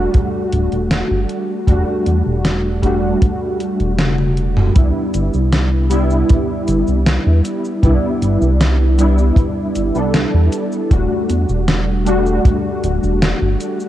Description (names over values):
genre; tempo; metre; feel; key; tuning
vaporwave; 78 BPM; 4/4; straight; unclear; A4 = 440 Hz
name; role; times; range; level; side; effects
warbly lo-fi synth keys; accompaniment; 0.0-13.9 s; G3 to A4; -18 LUFS; equal; ensemble chorus, tape echo
chorused synth bass; bass; 0.0-13.6 s; D1 to E2; -16 LUFS; equal; none
gated 80s digital drum machine; drums; 0.1-13.9 s; cabasa, hi-hat, snare drum, toms; -19 LUFS; equal; gated reverb, gated reverb snare, overdrive
kick drum; drums; 0.1-12.6 s; none; -16 LUFS; equal; none
room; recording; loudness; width
light reverb; dark, warm production; -13 LUFS; side -13 dB against mid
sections
0.0-4.8 A section; 4.8-13.9 B section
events
drum fill 4.0-4.8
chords
0.0 Em11; 4.8 Cmaj7; 10.9 Em11